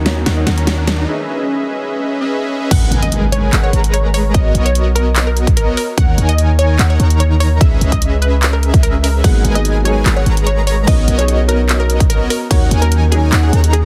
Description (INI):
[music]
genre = future bass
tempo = 147 BPM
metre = 4/4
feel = swing 53% on 16ths, half-time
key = G# minor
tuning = A4 = 440 Hz
[part]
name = felt-muted upright piano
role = accompaniment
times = 0.0-1.1, 9.2-13.8 s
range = F#3 to A#4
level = -26 LUFS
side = equal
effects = sidechain pumping, tape echo
[part]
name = soft supersaw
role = riff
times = 0.0-13.8 s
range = D#3 to A#5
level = -23 LUFS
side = equal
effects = sidechain pumping, low-pass filter
[part]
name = warm 808-style bass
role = bass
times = 0.0-13.8 s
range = G#1 to D#2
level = -16 LUFS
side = equal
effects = tube saturation, sidechain pumping
[part]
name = riser and impact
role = sound effects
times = 0.0-4.3 s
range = none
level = -27 LUFS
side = equal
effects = none
[part]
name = soft round pluck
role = arpeggios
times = 0.1-1.1 s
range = F#4 to A#5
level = -36 LUFS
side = equal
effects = none
[part]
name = dubstep drum kit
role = drums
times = 0.1-13.8 s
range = crash cymbal, handclaps, hi-hat, snare drum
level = -23 LUFS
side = equal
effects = none
[part]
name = unison pluck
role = melody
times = 2.7-13.8 s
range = G#4 to F#5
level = -24 LUFS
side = equal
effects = sidechain pumping, tape echo
[part]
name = airy dreamy lead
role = arpeggios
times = 2.7-13.8 s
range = D#5 to A#5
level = -29 LUFS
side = equal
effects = chorus, sidechain pumping
[part]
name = electronic kick drum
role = drums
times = 2.7-12.6 s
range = none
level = -15 LUFS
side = equal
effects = none
[sound]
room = digital ambience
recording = heavily compressed radio sound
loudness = -14 LUFS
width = mono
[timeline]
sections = 0.0-2.7 A section; 2.7-13.8 B section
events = build-up 0.0-2.7; drum fill 0.0-1.1; riser 0.0-1.1; filter sweep on supersaw synth 0.0-2.7; break 1.1-2.7; drop 2.7-13.8; impact 2.7-4.3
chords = 0.0 D#m7; 1.1 C#m9; 2.7 G#m9; 4.3 Bmaj9; 5.8 D#m7; 7.6 C#m9; 9.2 G#m9; 10.9 Bmaj9; 12.3 D#m7